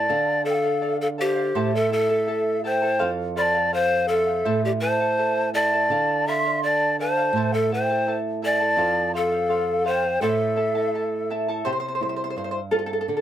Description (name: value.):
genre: andean folk, Andean ensemble.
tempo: 83 BPM.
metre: 2/4.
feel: straight.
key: A minor.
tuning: A4 = 440 Hz.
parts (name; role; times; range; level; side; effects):
breathy bright large pan pipes; melody; 0.0-11.3 s; G4 to E5; -22 LUFS; equal; none.
breathy mellow large quena; second line; 0.0-11.3 s; C5 to C6; -27 LUFS; left 1 dB; none.
charango; accompaniment; 0.0-13.2 s; E4 to A5; -28 LUFS; equal; none.
nylon-string guitar; accompaniment; 0.0-13.2 s; F2 to E4; -30 LUFS; right 5 dB; none.
room: light reverb.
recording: close, detailed microphones.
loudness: -20 LUFS.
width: side -11 dB against mid.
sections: 0.1-11.7 A section; 11.7-13.2 B section.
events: charango solo 11.7-13.2.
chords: 0.1 Dm; 1.6 Am; 3.0 F; 4.5 Am; 5.9 Dm; 7.3 Am; 8.8 F; 10.2 Am; 11.7 C.